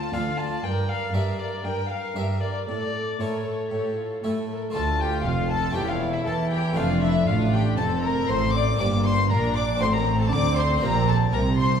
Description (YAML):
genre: classical, baroque-style concerto movement with solo episodes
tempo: 118 BPM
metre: 4/4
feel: straight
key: D minor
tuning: A4 = 440 Hz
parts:
  - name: dark violin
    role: melody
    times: 0.0-11.8 s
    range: C#5 to D6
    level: -30 LUFS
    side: left 4 dB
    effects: none
  - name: warm chamber violin section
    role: melody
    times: 0.0-11.8 s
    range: F4 to D6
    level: -33 LUFS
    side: left 4 dB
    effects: none
  - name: rich chamber violin section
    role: second line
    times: 0.0-11.8 s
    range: E4 to A5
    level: -32 LUFS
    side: left 3 dB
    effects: none
  - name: harpsichord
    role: accompaniment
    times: 0.0-11.8 s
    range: D2 to Bb4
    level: -33 LUFS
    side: equal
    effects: none
  - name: warm chamber viola section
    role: accompaniment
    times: 0.0-11.8 s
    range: Bb3 to Bb4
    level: -31 LUFS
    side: equal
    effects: none
  - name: warm chamber cello section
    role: bass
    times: 0.0-11.8 s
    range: D2 to E3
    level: -26 LUFS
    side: right 2 dB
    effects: none
  - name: rich chamber double bass section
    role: bass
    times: 4.8-11.8 s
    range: E1 to E2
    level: -26 LUFS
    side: right 2 dB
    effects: none
room: wet recital hall reverb, RT60 1.5 s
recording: heard from further back in the room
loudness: -21 LUFS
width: side -7 dB against mid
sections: 0.0-4.7 A section; 4.7-11.8 B section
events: none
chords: 0.0 Dm; 0.6 Gm; 2.7 A; 4.7 Dm; 5.8 A7/E; 6.8 Dm/F; 8.8 Gm; 9.8 D7/A; 10.8 Gm/Bb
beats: 0.14 | 0.64 1.14 1.65 2.16 | 2.68 3.20 3.72 4.23 | 4.75 5.26 5.76 6.27 | 6.78 7.29 7.79 8.30 | 8.81 9.31 9.82 10.33 | 10.83 11.33